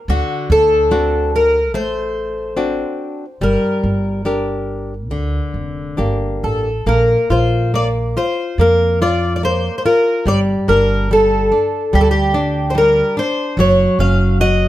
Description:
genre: fado-style ballad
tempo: 72 BPM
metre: 4/4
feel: rubato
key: G minor, Bb major from 6.9 s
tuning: A4 = 438 Hz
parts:
  - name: fingerpicked twelve-string acoustic guitar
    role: melody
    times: 0.0-14.7 s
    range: F#4 to F5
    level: -16 LUFS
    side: equal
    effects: plate reverb
  - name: flamenco guitar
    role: accompaniment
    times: 0.1-14.7 s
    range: D3 to Bb4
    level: -19 LUFS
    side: left 1 dB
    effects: none
  - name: upright bass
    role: bass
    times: 0.1-14.7 s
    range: F1 to F2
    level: -19 LUFS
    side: right 1 dB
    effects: none
room: moderate studio reverb, RT60 0.6 s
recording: none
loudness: -14 LUFS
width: side -14 dB against mid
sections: 0.0-6.9 A section; 6.9-14.7 B section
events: none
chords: 0.1 D7; 3.4 Gm; 6.9 Bb5; 10.3 G5; 13.6 Gb5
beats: | 0.09 0.92 1.75 2.58 | 3.42 4.25 5.10 5.98 | 6.87 7.73 8.58 9.43 | 10.26 11.10 11.94 12.76 | 13.58 14.40

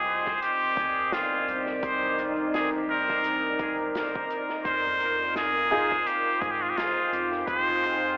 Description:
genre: ambient dub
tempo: 85 BPM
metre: 4/4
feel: swing 59% on 16ths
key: C minor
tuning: A4 = 441 Hz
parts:
  - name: trumpet with straight mute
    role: melody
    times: 0.0-8.2 s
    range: F4 to C5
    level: -25 LUFS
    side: equal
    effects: dub echo
  - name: deep dark ambient pad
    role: sustained chords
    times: 0.0-8.2 s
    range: C4 to Ab5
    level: -31 LUFS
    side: equal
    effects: chorus, built-in reverb
  - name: soft dub sub bass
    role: bass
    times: 0.0-8.2 s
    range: G1 to Ab2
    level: -44 LUFS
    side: equal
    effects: none
  - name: electronic kick drum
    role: drums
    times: 0.3-7.6 s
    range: none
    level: -39 LUFS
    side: equal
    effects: overdrive
  - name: soft-mallet drum kit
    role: drums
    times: 0.4-8.0 s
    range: hi-hat, snare drum, toms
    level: -40 LUFS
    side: equal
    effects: dub echo
  - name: bright upright piano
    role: stabs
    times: 5.7-5.9 s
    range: Eb4 to Ab4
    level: -33 LUFS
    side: equal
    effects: none
room: moderate echo chamber reverb, RT60 2.2 s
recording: echo-heavy mix, telephone sound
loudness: -24 LUFS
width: side -28 dB against mid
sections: 0.0-8.2 A section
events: none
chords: 0.0 Cm7; 4.7 Fm7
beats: 0.42 1.12 | 1.83 2.54 3.24 3.95 | 4.65 5.36 6.07 6.77 | 7.48

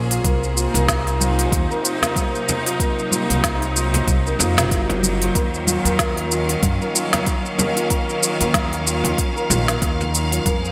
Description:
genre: organic downtempo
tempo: 94 BPM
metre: 4/4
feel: swing 57% on 16ths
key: unclear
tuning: A4 = 445 Hz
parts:
  - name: rich symphonic string section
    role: sustained chords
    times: 0.0-10.7 s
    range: Bb2 to F5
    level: -27 LUFS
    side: equal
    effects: sidechain pumping
  - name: santur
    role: arpeggios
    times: 0.0-10.7 s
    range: Bb3 to Bb4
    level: -27 LUFS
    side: equal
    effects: digital delay
  - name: upright bass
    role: bass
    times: 0.0-10.7 s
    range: Gb1 to Gb2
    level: -25 LUFS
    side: equal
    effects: tube saturation, sidechain pumping
  - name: organic electronic drum kit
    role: drums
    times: 0.1-10.7 s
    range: congas, hi-hat, shaker, snare drum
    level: -24 LUFS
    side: equal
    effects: overdrive, gated reverb
  - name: electronic kick drum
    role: drums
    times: 0.2-10.6 s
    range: none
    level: -25 LUFS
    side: equal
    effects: overdrive
  - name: frame drum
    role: percussion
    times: 2.0-10.1 s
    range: none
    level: -32 LUFS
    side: equal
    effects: none
room: moderate lush hall reverb, RT60 2.9 s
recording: bright 1980s-style digital production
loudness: -20 LUFS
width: mono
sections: 0.0-10.7 A section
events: none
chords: 0.2 Cm7b5; 5.4 Ebm7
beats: | 0.24 0.88 1.52 2.16 | 2.80 3.44 4.07 4.71 | 5.35 5.99 6.63 7.26 | 7.90 8.54 9.18 9.82 | 10.46

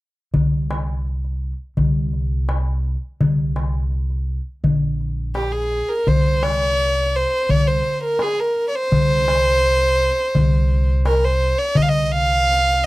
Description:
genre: Arabic maqam ensemble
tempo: 84 BPM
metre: 4/4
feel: straight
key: C maqam bayati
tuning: A4 = 441 Hz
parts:
  - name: upright bass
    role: bass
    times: 0.3-12.9 s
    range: Bb1 to C2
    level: -21 LUFS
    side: equal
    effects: none
  - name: darbuka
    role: percussion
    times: 0.3-11.9 s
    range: none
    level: -21 LUFS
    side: left 1 dB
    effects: none
  - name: rich violin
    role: melody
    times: 5.4-12.9 s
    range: G4 to F5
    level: -18 LUFS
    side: right 1 dB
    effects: none
room: little or no reverb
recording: dry, close 1970s-style studio recording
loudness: -17 LUFS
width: side -18 dB against mid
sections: 0.3-6.1 A section; 6.1-12.9 B section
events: none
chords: none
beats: | 0.35 1.06 1.78 2.50 | 3.21 3.93 4.64 5.36 | 6.07 6.79 7.50 8.21 | 8.93 9.64 10.35 11.07 | 11.78 12.49

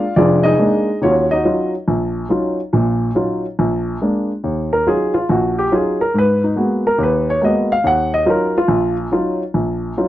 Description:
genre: jazz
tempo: 140 BPM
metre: 4/4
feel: swing 66% on 8ths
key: Eb minor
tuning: A4 = 440 Hz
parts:
  - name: dark baby grand piano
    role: solo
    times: 0.0-10.1 s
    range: F1 to Gb5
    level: -14 LUFS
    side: equal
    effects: none
room: light reverb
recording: dry, close 1970s-style studio recording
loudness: -14 LUFS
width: side -14 dB against mid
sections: 0.0-4.4 A section; 4.4-10.1 B section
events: grand piano solo 4.4-10.1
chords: 0.0 Bb7; 1.0 Ebm9; 3.6 Bb7; 4.4 Ebm9; 6.1 Abm9; 7.8 Ebm9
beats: 0.16 0.59 | 1.01 1.44 1.87 2.29 | 2.72 3.15 3.58 4.00 | 4.43 4.86 5.28 5.71 | 6.14 6.56 6.99 7.42 | 7.84 8.27 8.70 9.12 | 9.55 9.98

